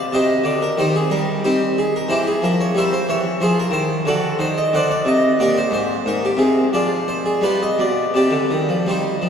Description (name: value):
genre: classical, baroque-style suite movement for harpsichord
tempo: 81-92 BPM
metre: 3/4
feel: rubato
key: C minor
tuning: A4 = 440 Hz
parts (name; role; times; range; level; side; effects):
- harpsichord; solo; 0.0-9.3 s; Ab2 to F#5; -16 LUFS; equal; none
room: wet cathedral reverb, RT60 5.2 s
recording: recorded in a church or concert hall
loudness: -16 LUFS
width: side -7 dB against mid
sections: 0.0-9.3 A section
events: none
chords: 0.1 Cm; 2.1 C7/E; 3.4 Fm; 4.1 D7; 5.4 Gm/Bb; 6.1 Abmaj9; 6.7 Fm; 7.4 G7; 8.1 Cm